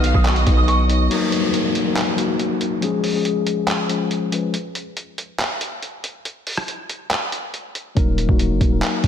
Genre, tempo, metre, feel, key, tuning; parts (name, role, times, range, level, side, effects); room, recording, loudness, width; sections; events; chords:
hip hop, trap; 140 BPM; 4/4; half-time; Eb minor; A4 = 440 Hz
dark concert grand piano; melody; 0.0-0.9 s; Db6 to F6; -24 LUFS; right 2 dB; wide subtle chorus, analog delay
dark studio violin section; second line; 0.0-1.1 s; D#5 to F5; -28 LUFS; right 2 dB; analog delay
mellow tine electric piano; accompaniment; 0.0-4.6, 8.0-9.1 s; F3 to Db5; -21 LUFS; left 5 dB
dark symphonic string section; sustained chords; 0.0-1.1 s; D#3 to F#4; -30 LUFS; right 1 dB
distorted 808-style bass; bass; 0.0-1.1, 8.0-9.1 s; Eb1 to B1; -19 LUFS; right 1 dB; distortion
lo-fi sampler-style drum kit; drums; 0.0-9.1 s; crash cymbal, handclaps, hi-hat, kick drum, rim click; -22 LUFS; right 1 dB
downlifter; sound effects; 1.1-4.5 s; -26 LUFS; equal
moderate lush hall reverb, RT60 1.9 s; dreamy mix soaked in reverb; -18 LUFS; side -9 dB against mid
0.0-1.1 A section; 1.1-9.1 B section
break 1.1-8.0
0.0 B; 1.1 Ebm; 2.8 Db; 4.5 N.C.; 8.0 Ebm